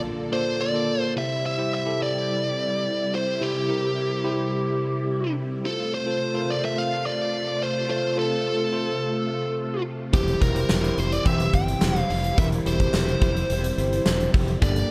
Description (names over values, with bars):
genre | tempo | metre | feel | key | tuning
1980s-style pop | 107 BPM | 4/4 | straight | C mixolydian | A4 = 439 Hz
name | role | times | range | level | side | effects
bell-like tine electric piano | accompaniment | 0.0-14.9 s | G2 to D5 | -31 LUFS | equal | none
string machine, violas | sustained chords | 0.0-14.9 s | Bb2 to A4 | -33 LUFS | equal | phaser, ensemble chorus
biting lead guitar | melody | 0.3-14.9 s | G4 to G5 | -29 LUFS | equal | overdrive, digital delay
modern bright fingered electric bass | bass | 10.1-14.8 s | E1 to G1 | -29 LUFS | equal | none
huge arena drum kit | drums | 10.1-14.9 s | hi-hat, kick drum, snare drum, tambourine | -27 LUFS | equal | none
group handclap | percussion | 10.7-14.2 s | none | -44 LUFS | equal | none
funky polysynth comp | stabs | 11.2-14.6 s | E3 to G4 | -35 LUFS | equal | chorus
room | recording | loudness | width
light reverb | dark, warm production | -24 LUFS | mono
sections
0.0-1.2 A section; 1.2-14.9 B section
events
lead electric guitar solo 0.0-1.2; break 0.0-1.2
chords
0.0 Bbmaj7; 1.2 C; 5.6 F; 10.1 C/E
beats
0.04 0.60 | 1.16 1.72 2.28 2.85 | 3.40 3.97 4.53 5.09 | 5.65 6.21 6.77 7.33 | 7.89 8.45 9.01 9.57 | 10.13 10.70 11.26 11.82 | 12.38 12.94 13.50 14.06 | 14.62